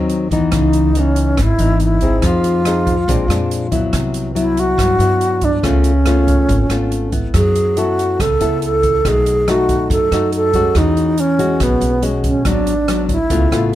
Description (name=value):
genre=bossa nova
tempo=141 BPM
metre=4/4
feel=straight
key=unclear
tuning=A4 = 440 Hz
part: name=bright wooden-headed alto flute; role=melody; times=0.0-13.7 s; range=B3 to A4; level=-17 LUFS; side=right 1 dB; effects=none
part: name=nylon-string guitar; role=accompaniment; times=0.0-13.8 s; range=F#2 to A4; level=-19 LUFS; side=left 3 dB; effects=none
part: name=upright bass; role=bass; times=0.0-13.8 s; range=G#1 to G2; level=-18 LUFS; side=equal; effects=none
part: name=open jazz drum kit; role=drums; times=0.1-13.6 s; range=hi-hat, kick drum, rim click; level=-22 LUFS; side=right 2 dB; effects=none
room=little or no reverb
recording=close, detailed microphones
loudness=-13 LUFS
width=side -13 dB against mid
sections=0.0-13.8 A section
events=none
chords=0.0 G#7 (rootless); 0.5 C#m9; 2.2 Fm7; 3.1 A#9; 3.9 Cmaj7#11; 5.6 C#7b13; 7.3 F#m11; 9.0 B7; 10.8 E69; 12.5 G#m7b5